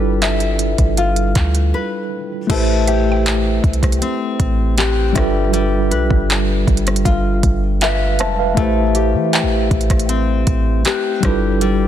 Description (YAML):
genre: contemporary R&B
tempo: 79 BPM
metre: 4/4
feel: straight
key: A minor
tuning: A4 = 437 Hz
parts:
  - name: mellow tine electric piano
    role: accompaniment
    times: 0.0-11.9 s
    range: G3 to A5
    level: -20 LUFS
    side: right 2 dB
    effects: medium stereo tremolo
  - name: nylon-string guitar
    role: arpeggios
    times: 0.0-11.9 s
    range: G3 to E5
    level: -21 LUFS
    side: left 7 dB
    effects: ping-pong delay
  - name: clean 808-style bass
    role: bass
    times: 0.0-11.9 s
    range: F1 to E3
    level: -18 LUFS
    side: equal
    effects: none
  - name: smooth R&B drum kit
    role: drums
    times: 0.2-11.8 s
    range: crash cymbal, handclaps, hi-hat, kick drum, rim click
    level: -19 LUFS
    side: equal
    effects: overdrive
  - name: mallet-like synth pluck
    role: texture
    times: 2.9-10.3 s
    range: D5 to G5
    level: -31 LUFS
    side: left 1 dB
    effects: none
room: digital ambience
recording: dense, heavily limited modern master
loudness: -14 LUFS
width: side -10 dB against mid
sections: 0.0-2.5 A section; 2.5-11.9 B section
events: break 1.7-2.5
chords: 0.0 G13; 2.5 Am9; 5.2 G13; 8.6 Am9; 11.2 G13